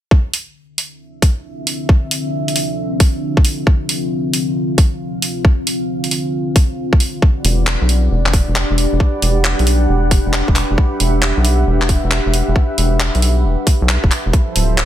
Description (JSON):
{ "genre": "UK garage, two-step garage", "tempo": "135 BPM", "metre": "4/4", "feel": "swing 66% on 16ths", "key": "unclear", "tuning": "A4 = 440 Hz", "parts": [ { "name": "electronic kick drum", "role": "drums", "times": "0.1-14.5 s", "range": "none", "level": "-12 LUFS", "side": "equal", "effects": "studio ambience" }, { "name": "deep dark ambient pad", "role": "texture", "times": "1.5-14.8 s", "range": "D3 to F#5", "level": "-21 LUFS", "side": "left 1 dB", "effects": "chorus, built-in reverb, sidechain pumping" }, { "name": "garage drum kit", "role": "drums", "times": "0.3-14.8 s", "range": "handclaps, hi-hat", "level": "-19 LUFS", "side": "right 1 dB", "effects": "studio ambience" }, { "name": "warm analog pad", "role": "sustained chords", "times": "7.2-14.8 s", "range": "F3 to F#5", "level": "-24 LUFS", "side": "right 2 dB", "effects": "lush chorus, sidechain pumping" }, { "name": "rubbery square bass", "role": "bass", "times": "7.4-14.8 s", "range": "D1 to B1", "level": "-15 LUFS", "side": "equal", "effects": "none" } ], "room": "little or no reverb", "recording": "dense, heavily limited modern master", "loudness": "-14 LUFS", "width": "side -12 dB against mid", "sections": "0.1-14.3 A section", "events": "none", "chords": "0.1 Dm9; 7.0 Em9; 14.3 Dm9", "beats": "| 0.11 0.56 1.00 1.45 | 1.89 2.34 2.78 3.23 | 3.67 4.11 4.56 5.00 | 5.45 5.89 6.34 6.78 | 7.22 7.67 8.11 8.56 | 9.00 9.45 9.89 10.34 | 10.78 11.22 11.67 12.11 | 12.56 13.00 13.45 13.89 | 14.34 14.78" }